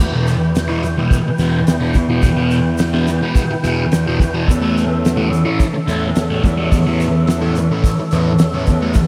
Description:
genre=psychedelic rock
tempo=107 BPM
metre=4/4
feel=straight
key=E dorian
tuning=A4 = 439 Hz
part: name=mellow tonewheel organ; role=sustained chords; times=0.0-9.1 s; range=B3 to G5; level=-27 LUFS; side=equal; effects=slow rotary speaker, chorus vibrato
part: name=fuzz picked electric bass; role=bass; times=0.0-9.1 s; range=E2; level=-22 LUFS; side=equal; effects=overdrive
part: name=egg shaker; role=percussion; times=0.0-9.1 s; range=none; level=-41 LUFS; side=equal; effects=none
part: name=thick fuzz guitar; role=riff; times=0.1-9.0 s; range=E2 to A3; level=-20 LUFS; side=equal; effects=distortion, phaser
part: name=cloth-damped thuddy drum kit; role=drums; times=0.3-9.1 s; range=hi-hat, kick drum, snare drum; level=-21 LUFS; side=equal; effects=none
room=moderate huge ambient reverb, RT60 6.2 s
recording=dreamy mix soaked in reverb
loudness=-16 LUFS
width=mono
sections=0.0-9.1 A section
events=none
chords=0.0 Em; 4.5 A/E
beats=| 0.00 0.56 1.12 1.68 | 2.24 2.80 3.36 3.92 | 4.47 5.03 5.59 6.15 | 6.71 7.27 7.83 8.39 | 8.95

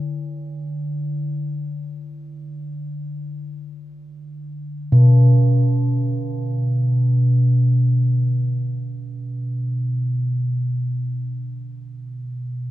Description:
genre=world meditative, free-time meditation music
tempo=free time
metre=none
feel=none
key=unclear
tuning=A4 = 440 Hz
part: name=quartz singing bowl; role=solo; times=0.0-12.7 s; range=B2 to D3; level=-19 LUFS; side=equal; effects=none
room=moderate cathedral reverb, RT60 4.5 s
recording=none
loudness=-18 LUFS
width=side -15 dB against mid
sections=0.0-4.3 A section; 4.3-12.7 A section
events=none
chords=none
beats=free time

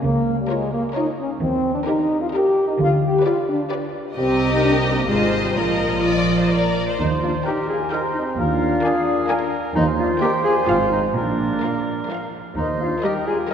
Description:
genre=cinematic, playful, whimsical film cue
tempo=130 BPM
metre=3/4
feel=straight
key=Eb major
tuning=A4 = 436 Hz
part: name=mellow French horn section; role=sustained chords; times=0.0-13.5 s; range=F3 to G4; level=-22 LUFS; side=left 1 dB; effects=none
part: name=warm studio cello section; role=bass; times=0.0-12.9 s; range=Eb2 to Eb3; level=-28 LUFS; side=right 2 dB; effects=none
part: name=warm studio double bass section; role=bass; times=0.0-12.9 s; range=Ab1 to Eb2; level=-28 LUFS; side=right 2 dB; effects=none
part: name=warm studio violin section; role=melody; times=0.5-13.5 s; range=Bb4 to Ab5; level=-29 LUFS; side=left 2 dB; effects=none
part: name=rich studio violin section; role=second line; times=0.5-13.5 s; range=Bb4 to D5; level=-30 LUFS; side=left 2 dB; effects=none
part: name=rich studio viola section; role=accompaniment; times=0.5-13.5 s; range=F3 to G4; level=-28 LUFS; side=right 1 dB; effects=none
part: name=mellow clarinet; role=second line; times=7.0-13.5 s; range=D4 to Bb4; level=-24 LUFS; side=left 2 dB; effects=none
part: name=mellow cor anglais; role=second line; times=7.0-13.5 s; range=Ab4 to C5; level=-26 LUFS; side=right 4 dB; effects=none
part: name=mellow small flute group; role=second line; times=7.0-13.5 s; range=D5 to Bb5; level=-27 LUFS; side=left 2 dB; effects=none
part: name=mellow tuba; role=bass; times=7.0-12.9 s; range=Ab1 to Eb2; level=-29 LUFS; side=right 4 dB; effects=none
room=wet church reverb, RT60 3.5 s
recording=none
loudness=-18 LUFS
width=side -8 dB against mid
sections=0.0-7.0 A section; 7.0-13.5 B section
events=none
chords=0.0 Bbm/Db; 1.4 Eb; 2.8 G/D; 4.2 Cm7; 5.1 Fm7/Ab; 5.6 Bbsus4; 7.0 Eb; 8.4 Bb7/Eb; 9.8 Eb; 10.7 Fm/Ab; 11.2 Bb; 12.6 Eb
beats=| 0.04 0.50 0.96 | 1.42 1.87 2.33 | 2.79 3.25 3.71 | 4.16 4.62 5.09 | 5.56 6.04 6.52 | 6.99 7.46 7.92 | 8.39 8.85 9.30 | 9.76 10.22 10.68 | 11.15 11.62 12.10 | 12.57 13.04 13.50

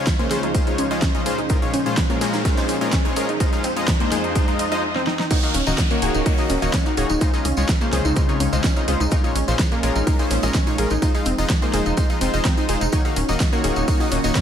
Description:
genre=progressive house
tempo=126 BPM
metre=4/4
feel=straight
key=Eb dorian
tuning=A4 = 438 Hz
part: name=lush unison pad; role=sustained chords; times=0.0-14.4 s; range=Db2 to C5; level=-28 LUFS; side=equal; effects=chorus, phaser, sidechain pumping
part: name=supersaw stab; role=stabs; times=0.0-14.4 s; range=Bb2 to F5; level=-25 LUFS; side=left 3 dB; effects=sidechain pumping, digital delay
part: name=riser and downlifter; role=sound effects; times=1.2-9.1 s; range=none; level=-32 LUFS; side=equal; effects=none
part: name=big-room dance drum kit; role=drums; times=0.1-14.4 s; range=crash cymbal, hi-hat, snare drum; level=-27 LUFS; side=right 1 dB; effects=overdrive, sidechain pumping on hats, sidechain pumping on cymbals
part: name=electronic kick drum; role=drums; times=0.1-14.4 s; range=none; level=-21 LUFS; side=equal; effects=overdrive
part: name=gated 80s drum kit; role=drums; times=0.1-14.4 s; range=hi-hat, shaker, snare drum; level=-35 LUFS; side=right 1 dB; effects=none
part: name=wide unison pluck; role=arpeggios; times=0.2-14.4 s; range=Bb3 to Eb5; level=-25 LUFS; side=equal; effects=sidechain pumping, digital delay
part: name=tambourine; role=percussion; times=5.3-14.4 s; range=none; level=-35 LUFS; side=right 3 dB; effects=none
part: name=tight sequencer bass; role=bass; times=5.5-14.3 s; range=Eb1 to Db2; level=-23 LUFS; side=equal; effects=tube saturation, sidechain pumping
room=light reverb, studio reverb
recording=none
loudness=-18 LUFS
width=side -9 dB against mid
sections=0.0-5.3 A section; 5.3-14.4 B section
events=build-up 0.0-5.3; filter sweep on synth pluck 0.0-5.3; break 4.8-5.3; drum fill 5.0-5.3; drop 5.3-14.4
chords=0.0 Dbmaj7; 1.5 Bbm7; 3.4 Fm7; 5.3 Ebm7; 7.2 Dbmaj7; 9.1 Bbm7; 11.0 Fm7; 12.9 Ebm7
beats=0.07 0.55 1.02 | 1.50 1.97 2.45 2.93 | 3.40 3.88 4.36 4.83 | 5.31 5.78 6.26 6.74 | 7.21 7.69 8.16 8.64 | 9.12 9.59 10.07 10.54 | 11.02 11.50 11.97 12.45 | 12.93 13.40 13.88 14.36

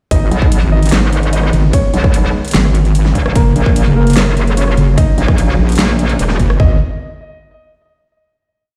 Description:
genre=heavy wobble dubstep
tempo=148 BPM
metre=4/4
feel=half-time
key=G# minor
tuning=A4 = 440 Hz
part: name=dark concert grand piano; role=melody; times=0.1-6.8 s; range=A#3 to D#5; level=-24 LUFS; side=equal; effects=digital delay
part: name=supersaw chords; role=sustained chords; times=0.1-6.8 s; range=D#3 to B3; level=-26 LUFS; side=equal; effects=phaser, sidechain pumping
part: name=wobble bass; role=bass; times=0.1-6.8 s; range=F#1 to A#1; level=-14 LUFS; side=equal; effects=chorus, overdrive
part: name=dubstep drum kit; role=drums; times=0.1-6.7 s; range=kick drum, toms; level=-15 LUFS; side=equal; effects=none
part: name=dubstep drum kit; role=drums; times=0.1-6.6 s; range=hi-hat, rim click, snare drum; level=-21 LUFS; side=equal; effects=none
part: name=metallic wobble bass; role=bass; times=0.3-6.4 s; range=E1 to B1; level=-16 LUFS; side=equal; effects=chorus, overdrive
room=little or no reverb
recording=played on a big sound system in a bare room, stone room reverb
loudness=-12 LUFS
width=mono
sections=0.1-6.6 drop; 6.6-8.2 final chord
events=drop 0.1-6.6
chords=0.1 G#m; 3.4 F#; 6.6 G#m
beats=| 0.11 0.52 0.92 1.33 | 1.73 2.14 2.54 2.95 | 3.35 3.76 4.17 4.57 | 4.98 5.38 5.79 6.19 | 6.60

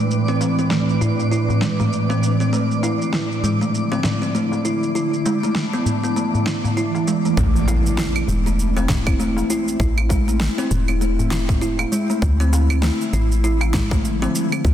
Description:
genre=organic downtempo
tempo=99 BPM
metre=4/4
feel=swing 58% on 16ths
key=A harmonic minor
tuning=A4 = 441 Hz
part: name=ethereal airy pad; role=sustained chords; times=0.0-14.7 s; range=A2 to A5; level=-23 LUFS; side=right 2 dB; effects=ensemble chorus, built-in reverb, phaser, sidechain pumping
part: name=kalimba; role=arpeggios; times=0.0-14.7 s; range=G#3 to E4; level=-22 LUFS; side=equal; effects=low-pass filter, digital delay
part: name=twinkling granular texture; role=texture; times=0.0-7.4 s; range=D4 to D5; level=-30 LUFS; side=right 1 dB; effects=built-in reverb
part: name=electronic shaker, snare drum and claves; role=drums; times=0.1-14.7 s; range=none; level=-27 LUFS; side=right 1 dB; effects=overdrive, low-pass filter on perc, low-pass filter on snare
part: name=darbuka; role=percussion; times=0.4-14.5 s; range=none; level=-27 LUFS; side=left 2 dB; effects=none
part: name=woody FM bass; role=bass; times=7.4-14.7 s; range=E1 to D2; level=-20 LUFS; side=equal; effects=sidechain pumping
part: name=electronic kick drum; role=drums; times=7.4-14.7 s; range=none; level=-22 LUFS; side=equal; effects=overdrive
part: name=impact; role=sound effects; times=7.4-9.8 s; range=none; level=-26 LUFS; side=equal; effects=none
room=light reverb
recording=dense, heavily limited modern master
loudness=-17 LUFS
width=side -10 dB against mid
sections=0.0-7.4 A section; 7.4-14.7 B section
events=impact 7.4-9.8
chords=0.0 Am; 2.5 Dm; 5.0 E7sus4; 7.4 Am; 12.2 Dm7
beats=| 0.10 0.71 1.31 1.92 | 2.53 3.13 3.74 4.34 | 4.95 5.56 6.16 6.77 | 7.38 7.98 8.59 9.19 | 9.80 10.40 11.01 11.62 | 12.22 12.83 13.44 14.04 | 14.65

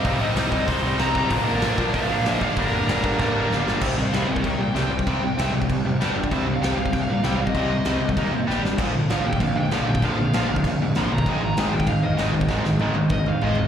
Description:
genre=punk rock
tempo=193 BPM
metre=4/4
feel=straight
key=C minor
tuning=A4 = 440 Hz
part: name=high-gain lead guitar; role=melody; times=0.0-13.7 s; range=Bb4 to C6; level=-29 LUFS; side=equal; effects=distortion, slapback echo, ping-pong delay
part: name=distorted electric guitar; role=riff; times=0.0-13.7 s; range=G2 to G4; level=-23 LUFS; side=equal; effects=overdrive, slapback echo
part: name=fuzz picked electric bass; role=bass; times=0.0-13.7 s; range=F1 to C3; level=-26 LUFS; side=equal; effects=overdrive
part: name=big rock drum kit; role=drums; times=0.0-13.6 s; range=crash cymbal, hi-hat, kick drum, snare drum, toms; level=-26 LUFS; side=equal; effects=none
room=studio reverb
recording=live gig heard through the venue's PA, recital hall reverb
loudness=-20 LUFS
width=side -9 dB against mid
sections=0.0-3.8 A section; 3.8-13.7 B section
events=drum fill 3.2-3.8, 8.5-8.8, 12.5-13.7; lead electric guitar solo 3.8-13.7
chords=0.0 Cm; 1.3 Bb; 2.6 Gm; 3.8 C5; 6.0 G5; 6.3 Cm; 8.2 Eb5; 8.5 G5; 8.8 Bb; 11.3 Ab5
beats=| 0.06 0.38 0.69 1.00 | 1.31 1.63 1.94 2.25 | 2.57 2.88 3.19 3.50 | 3.81 4.13 4.44 4.75 | 5.06 5.38 5.69 6.00 | 6.31 6.62 6.93 7.24 | 7.55 7.86 8.17 8.48 | 8.79 9.10 9.41 9.72 | 10.03 10.34 10.65 10.96 | 11.26 11.57 11.88 12.19 | 12.50 12.81 13.12 13.43

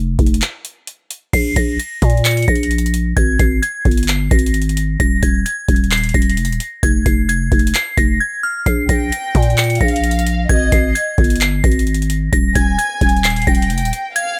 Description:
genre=hip hop, trap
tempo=131 BPM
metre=4/4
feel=half-time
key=unclear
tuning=A4 = 440 Hz
part: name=growling 808-style bass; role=bass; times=0.0-13.9 s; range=Eb1 to Bb2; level=-19 LUFS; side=equal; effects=none
part: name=booming analog drum machine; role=drums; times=0.2-14.3 s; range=crash cymbal, handclaps, hi-hat, kick drum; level=-19 LUFS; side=equal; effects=none
part: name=glassy synth bell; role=melody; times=1.3-14.3 s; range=F6 to Db7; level=-23 LUFS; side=equal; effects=chorus, phaser
part: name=dark studio violin section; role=second line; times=8.9-14.4 s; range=Eb5 to Ab5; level=-26 LUFS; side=equal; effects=digital delay
room=little or no reverb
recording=none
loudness=-16 LUFS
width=mono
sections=0.0-1.3 A section; 1.3-14.4 B section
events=break 0.0-1.3, 8.2-8.7; kick muted 14.2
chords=0.0 N.C.; 3.2 Abmaj7sus2; 5.0 Ebsus4; 6.8 Fm; 8.7 Bb5; 10.5 Ab5; 12.3 Ebsus4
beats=0.42 0.88 | 1.33 1.79 2.25 2.71 | 3.17 3.62 4.08 4.54 | 5.00 5.46 5.91 6.37 | 6.83 7.29 7.75 8.20 | 8.66 9.12 9.58 10.04 | 10.49 10.95 11.41 11.87 | 12.33 12.78 13.24 13.70 | 14.16

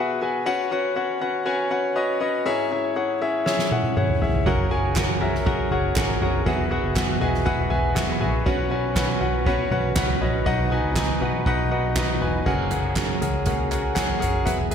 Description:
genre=piano-driven pop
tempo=120 BPM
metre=4/4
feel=straight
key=B major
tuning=A4 = 440 Hz
part: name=clear concert grand piano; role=accompaniment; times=0.0-14.7 s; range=G#2 to C#6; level=-23 LUFS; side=left 2 dB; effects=slapback echo
part: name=soft-mallet drum kit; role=drums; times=3.5-14.7 s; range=crash cymbal, handclaps, hi-hat, kick drum, ride cymbal, snare drum, toms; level=-24 LUFS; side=right 1 dB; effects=none
part: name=direct-recorded clean electric guitar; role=riff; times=4.5-14.7 s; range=B2 to B4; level=-30 LUFS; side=right 9 dB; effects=ensemble chorus, slapback echo
part: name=vintage muted fingered electric bass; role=bass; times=4.5-14.7 s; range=E1 to C#2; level=-28 LUFS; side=right 1 dB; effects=none
part: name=group handclap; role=percussion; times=5.0-14.1 s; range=none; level=-38 LUFS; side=right 8 dB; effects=none
room=moderate lush hall reverb, RT60 2.0 s, small room reverb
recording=big arena sound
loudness=-20 LUFS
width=side -7 dB against mid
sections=0.0-12.5 A section; 12.5-14.7 B section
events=drum fill 3.5-4.5; grand piano fill 7.0-8.5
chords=0.5 Bsus2; 2.5 C#m; 4.5 F#add9; 6.5 Eadd9; 8.5 Bsus2; 10.5 B; 12.5 F#add9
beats=| 0.46 0.96 1.46 1.96 | 2.46 2.96 3.46 3.96 | 4.46 4.96 5.46 5.96 | 6.46 6.96 7.46 7.96 | 8.46 8.96 9.46 9.96 | 10.46 10.96 11.46 11.97 | 12.47 12.97 13.47 13.97 | 14.47

